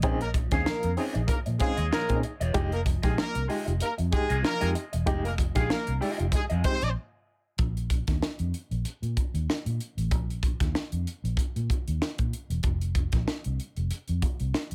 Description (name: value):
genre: funk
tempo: 95 BPM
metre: 4/4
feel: swing 56% on 16ths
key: unclear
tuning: A4 = 440 Hz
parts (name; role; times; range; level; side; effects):
- electric guitar at the edge of break-up; accompaniment; 0.0-6.9 s; F4 to F5; -38 LUFS; equal; wah, spring reverb
- barky reed electric piano; stabs; 0.0-6.8 s; Bb2 to Ab4; -35 LUFS; equal; overdrive, tremolo
- vintage muted fingered electric bass; bass; 0.0-14.7 s; E1 to Bb2; -31 LUFS; equal; none
- crisp fusion drum kit; drums; 0.0-14.7 s; hi-hat, kick drum, snare drum; -31 LUFS; equal; none
- warm horn section; second line; 0.2-6.9 s; Ab3 to C5; -33 LUFS; equal; none
room: little or no reverb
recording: none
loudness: -28 LUFS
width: mono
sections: 0.0-7.6 A section; 7.6-14.7 B section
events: break 7.0-7.6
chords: 0.0 Bbm11; 2.5 Fm7; 7.6 N.C.; 12.6 F5